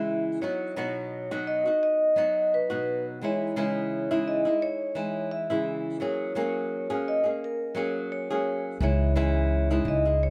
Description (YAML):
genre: acoustic pop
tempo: 86 BPM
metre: 4/4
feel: swing 55% on 16ths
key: unclear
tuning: A4 = 439 Hz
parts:
  - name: vibraphone with medium mallets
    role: melody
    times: 0.0-10.3 s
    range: A#4 to E5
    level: -30 LUFS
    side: equal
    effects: none
  - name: flamenco guitar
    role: accompaniment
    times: 0.0-10.3 s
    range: B2 to G#4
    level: -31 LUFS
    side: equal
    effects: none
  - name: upright bass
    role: bass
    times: 8.8-10.3 s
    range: C#2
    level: -27 LUFS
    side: equal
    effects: none
room: light reverb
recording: close, detailed microphones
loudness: -27 LUFS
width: mono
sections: 0.0-10.3 A section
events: none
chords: 0.4 B; 3.2 C#madd9; 6.0 F#add9; 8.8 C#madd9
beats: | 0.41 1.11 1.81 2.51 | 3.21 3.91 4.61 5.31 | 6.01 6.71 7.41 8.11 | 8.81 9.51 10.21